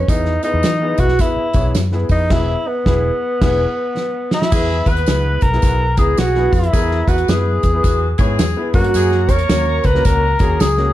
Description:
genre	uptempo 1960s-style soul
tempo	108 BPM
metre	4/4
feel	swing 62% on 8ths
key	unclear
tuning	A4 = 439 Hz
part	breathy tenor saxophone	melody	0.0-10.9 s	B3 to C#5	-18 LUFS	equal	slapback echo
part	vintage muted fingered electric bass	bass	0.0-10.9 s	E1 to E3	-18 LUFS	equal	none
part	clear concert grand piano	accompaniment	0.1-10.9 s	A#3 to C#5	-24 LUFS	left 2 dB	tube saturation
part	natural country drum kit	drums	0.1-10.9 s	crash cymbal, hi-hat, kick drum, snare drum	-18 LUFS	equal	none
part	tambourine	percussion	0.1-10.8 s	none	-35 LUFS	right 8 dB	none
part	clear saxophone section	second line	4.5-10.9 s	F#3 to B4	-26 LUFS	left 1 dB	none
part	dark studio string section	second line	8.9-10.9 s	A#4 to A#5	-28 LUFS	left 3 dB	none
room	light reverb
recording	dark, warm production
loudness	-13 LUFS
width	side -14 dB against mid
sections	0.0-4.5 A section; 4.5-10.9 B section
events	band accent 2.3-4.5; drum fill 4.0-4.5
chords	0.1 E; 8.7 F#

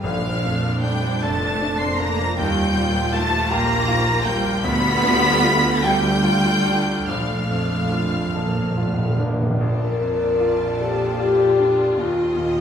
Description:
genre	cinematic, emotional film score for orchestra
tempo	47-54 BPM (dotted quarters)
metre	6/8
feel	rubato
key	Bb major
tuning	A4 = 440 Hz
part	rich studio violin section	melody	0.0-12.6 s	G5 to C7	-27 LUFS	left 1 dB	none
part	rich studio violin section	second line	0.0-12.6 s	D5 to C6	-26 LUFS	left 1 dB	none
part	bright concert grand piano	accompaniment	0.0-12.6 s	Bb1 to A4	-26 LUFS	left 1 dB	none
part	rich studio viola section	accompaniment	0.0-12.6 s	D3 to F4	-28 LUFS	right 1 dB	none
part	rich studio cello section	bass	0.0-12.6 s	Bb2 to C4	-25 LUFS	right 1 dB	none
part	rich studio double bass section	bass	0.0-12.6 s	F1 to Eb2	-27 LUFS	right 2 dB	none
part	timpani	percussion	0.0-1.2, 7.1-9.6 s	Bb2	-26 LUFS	right 1 dB	none
part	dark French horn section	sustained chords	9.6-12.6 s	F4 to Bb4	-18 LUFS	left 3 dB	none
room	wet recital hall reverb, RT60 1.5 s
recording	recorded in a church or concert hall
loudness	-17 LUFS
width	side -8 dB against mid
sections	0.0-9.6 A section; 9.6-12.6 B section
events	timpani fill 7.1-9.6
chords	0.0 Bbmaj7; 2.4 Ebadd9; 4.6 G7/D; 7.1 Bbmaj7; 12.0 Ebadd9

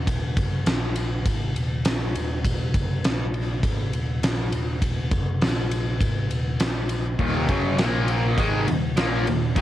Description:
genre	hard rock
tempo	101 BPM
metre	4/4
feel	straight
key	Eb minor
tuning	A4 = 442 Hz
part	picked electric bass	bass	0.0-9.6 s	Eb1 to Bb1	-26 LUFS	equal	none
part	huge arena drum kit	drums	0.1-9.6 s	kick drum, ride cymbal, snare drum	-24 LUFS	equal	cassette tape
part	cranked stack guitar	riff	7.2-9.6 s	Eb2 to Bb3	-25 LUFS	left 7 dB	overdrive
part	cranked stack guitar	riff	7.2-9.6 s	Eb2 to Bb3	-26 LUFS	right 6 dB	overdrive, phaser
room	light reverb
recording	home recording on cassette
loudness	-21 LUFS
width	side -13 dB against mid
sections	0.0-9.6 A section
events	none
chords	0.0 Ebm; 0.7 N.C.; 1.3 Ebm; 3.0 N.C.; 3.6 Ebm; 5.4 N.C.; 6.0 Ebsus4; 6.6 N.C.; 7.2 Ebm; 7.8 Bb5; 8.4 Eb5

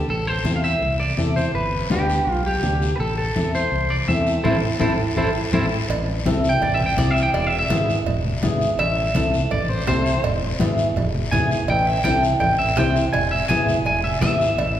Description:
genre	latin, cumbia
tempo	166 BPM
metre	4/4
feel	straight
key	A minor, A harmonic minor from 5.9 s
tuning	A4 = 441 Hz
part	electric guitar at the edge of break-up	melody	0.0-14.8 s	E4 to G#5	-22 LUFS	equal	spring reverb
part	fingered electric bass	bass	0.1-14.8 s	E1 to E2	-25 LUFS	equal	none
part	congas	percussion	0.1-14.8 s	none	-27 LUFS	right 1 dB	none
part	guiro	percussion	0.1-14.8 s	none	-34 LUFS	left 4 dB	none
part	nylon-string guitar	accompaniment	0.4-14.5 s	B3 to C5	-24 LUFS	left 2 dB	none
part	cowbell and timbales	percussion	5.9-14.8 s	none	-30 LUFS	right 4 dB	none
room	wet recital hall reverb, RT60 1.7 s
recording	recorded in a church or concert hall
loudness	-18 LUFS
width	side -11 dB against mid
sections	0.0-5.9 A section; 5.9-14.8 B section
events	band accent 4.4-5.9; drum fill 5.0-5.9; clean electric guitar solo 5.9-14.8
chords	0.1 Am; 1.5 G; 3.0 Am; 7.3 E; 8.8 Am; 10.2 E; 11.7 Am; 13.1 E

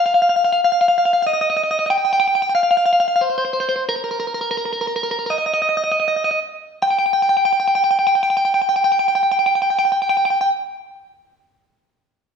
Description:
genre	rock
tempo	75-94 BPM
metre	4/4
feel	straight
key	unclear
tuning	A4 = 440 Hz
part	clean electric guitar	melody	0.0-10.5 s	Bb4 to G5	-16 LUFS	equal	spring reverb
room	wet stone room reverb, RT60 1.0 s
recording	band playing live in one room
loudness	-16 LUFS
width	side -6 dB against mid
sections	0.0-6.8 A section; 6.8-10.0 B section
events	slowing down 1.3-6.8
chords	none

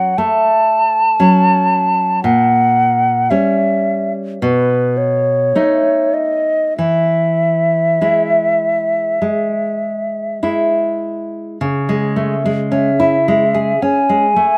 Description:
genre	romantic duo for flute and classical guitar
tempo	47-59 BPM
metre	4/4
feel	rubato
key	E major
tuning	A4 = 442 Hz
part	hollow concert flute	melody	0.0-14.6 s	B4 to A5	-17 LUFS	equal	none
part	nylon-string guitar	accompaniment	0.0-14.6 s	A#2 to G#4	-19 LUFS	equal	none
room	little or no reverb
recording	recorded outdoors, with no room sound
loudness	-15 LUFS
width	mono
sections	0.0-11.6 A section; 11.6-14.6 B section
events	none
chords	0.0 F#m; 2.2 A#dim7; 4.4 B7; 6.8 E; 11.6 C#m

